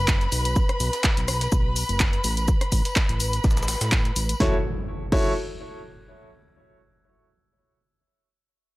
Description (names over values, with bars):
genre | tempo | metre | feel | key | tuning
piano house | 125 BPM | 4/4 | swing 54% on 16ths | F# minor | A4 = 440 Hz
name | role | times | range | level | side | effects
warm studio violin section | sustained chords | 0.0-4.4 s | B4 to B5 | -29 LUFS | left 1 dB | sidechain pumping
fat analog bass | bass | 0.0-5.3 s | F#1 to A2 | -27 LUFS | equal | sidechain pumping
breakbeat sampler-style drum kit | drums | 0.1-4.3 s | hi-hat, shaker, snare drum | -34 LUFS | equal | sidechain pumping on perc, high-pass filter on perc, high-pass filter on snare, sidechain pumping on hats, high-pass filter on hats, high-pass filter on room
electronic kick drum | drums | 0.1-5.2 s | none | -22 LUFS | equal | none
house drum kit | drums | 0.1-5.2 s | crash cymbal, handclaps, hi-hat, rim click, snare drum | -27 LUFS | equal | none
tambourine | percussion | 0.1-4.4 s | none | -37 LUFS | left 4 dB | none
warm grand piano | riff | 4.4-5.3 s | E4 to C#5 | -27 LUFS | equal | sidechain pumping, analog delay
impact | sound effects | 4.4-6.3 s | none | -33 LUFS | equal | none
room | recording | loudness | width
little or no reverb | dry, gritty hardware recording | -20 LUFS | side -19 dB against mid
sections
0.0-4.4 A section; 4.4-6.3 B section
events
filter sweep on analog synth bass 0.0-4.4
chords
0.0 B5; 2.2 Asus2; 4.4 F#m7